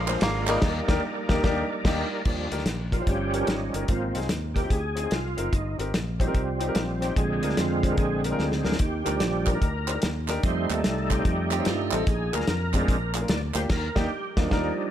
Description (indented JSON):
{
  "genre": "uptempo gospel",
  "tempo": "147 BPM",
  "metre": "4/4",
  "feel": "swing 64% on 8ths",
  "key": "Eb major",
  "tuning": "A4 = 440 Hz",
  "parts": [
    { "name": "bluegrass banjo", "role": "melody", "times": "0.0-1.8 s", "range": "D3 to Eb4", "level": "-31 LUFS", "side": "equal", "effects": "none" },
    { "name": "overdriven tonewheel organ", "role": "sustained chords", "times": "0.0-14.9 s", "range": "D3 to D5", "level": "-29 LUFS", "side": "right 2 dB", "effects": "slow rotary speaker, chorus vibrato" },
    { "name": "fingered electric bass", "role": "bass", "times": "0.0-14.7 s", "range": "Gb1 to G2", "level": "-30 LUFS", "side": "equal", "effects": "none" },
    { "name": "warm concert grand piano", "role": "accompaniment", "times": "0.1-14.7 s", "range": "G2 to C5", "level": "-32 LUFS", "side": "left 3 dB", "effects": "none" },
    { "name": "warm soul drum kit", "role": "drums", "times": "0.1-14.7 s", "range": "crash cymbal, hi-hat, kick drum, ride cymbal, snare drum", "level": "-27 LUFS", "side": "equal", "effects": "none" },
    { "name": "group handclap", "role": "percussion", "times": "0.1-0.5, 9.1-13.6 s", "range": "none", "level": "-34 LUFS", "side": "right 8 dB", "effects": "none" },
    { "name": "clean electric guitar", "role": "second line", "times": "11.5-12.3 s", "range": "Eb4 to G4", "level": "-34 LUFS", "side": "right 11 dB", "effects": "spring reverb" }
  ],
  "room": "light reverb",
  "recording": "none",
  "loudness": "-23 LUFS",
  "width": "side -11 dB against mid",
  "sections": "0.0-2.3 A section; 2.3-14.9 B section",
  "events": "band accent 0.6-2.3, 13.7-14.9; tonewheel organ solo 2.3-14.9; drum fill 8.4-8.8",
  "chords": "0.0 Bb7; 0.6 Ebmaj7; 3.1 Eb7/G; 3.9 Ab6; 5.5 Eb6/G; 7.2 Bb7; 8.8 Ebmaj7; 10.4 F7; 12.1 Bb7; 13.7 Ebmaj7",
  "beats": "0.22 | 0.62 1.03 1.44 1.85 | 2.25 2.66 3.07 3.48 | 3.89 4.30 4.71 5.12 | 5.53 5.94 6.34 6.75 | 7.16 7.57 7.98 8.39 | 8.80 9.21 9.62 10.03 | 10.44 10.85 11.25 11.66 | 12.07 12.48 12.89 13.30 | 13.71 14.11 14.52"
}